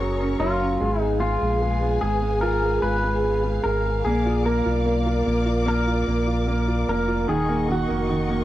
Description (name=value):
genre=pop ballad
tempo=74 BPM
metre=4/4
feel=straight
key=unclear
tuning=A4 = 440 Hz
part: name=clean electric guitar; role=melody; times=0.0-8.4 s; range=F4 to Cb5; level=-26 LUFS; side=left 2 dB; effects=harmonic tremolo, cassette tape
part: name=warm concert grand piano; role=accompaniment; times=0.0-8.4 s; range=Eb3 to F4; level=-24 LUFS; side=right 2 dB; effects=cassette tape
part: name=warm studio string section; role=sustained chords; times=0.0-8.4 s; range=Cb4 to D6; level=-31 LUFS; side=left 2 dB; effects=cassette tape
part: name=sub bass with octave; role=bass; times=0.0-8.4 s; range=Eb1 to Cb2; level=-25 LUFS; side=equal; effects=none
room=moderate studio reverb, RT60 0.5 s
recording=home recording on cassette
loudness=-20 LUFS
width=side -14 dB against mid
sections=0.0-8.4 A section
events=none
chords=0.0 Gb; 0.8 Fdim/Ab; 4.0 Bb; 7.3 Ebm7